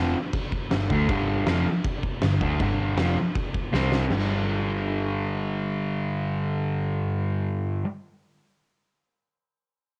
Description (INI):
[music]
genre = garage rock duo or trio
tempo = 159 BPM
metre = 4/4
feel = straight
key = unclear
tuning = A4 = 441 Hz
[part]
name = fuzz guitar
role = riff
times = 0.0-7.9 s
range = F2 to D4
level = -28 LUFS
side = equal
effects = distortion, cassette tape
[part]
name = hollow-body short-scale picked electric bass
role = bass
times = 0.0-7.8 s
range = F1 to D2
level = -31 LUFS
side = equal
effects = overdrive
[part]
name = oversized low-tuned drum kit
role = drums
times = 0.3-4.2 s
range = crash cymbal, kick drum, snare drum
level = -31 LUFS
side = equal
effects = cassette tape
[sound]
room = small room ambience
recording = home recording on cassette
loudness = -26 LUFS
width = mono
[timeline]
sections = 0.0-4.1 A section; 4.1-7.1 B section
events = drum fill 3.7-4.1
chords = 0.0 G5; 3.7 C5; 4.1 G5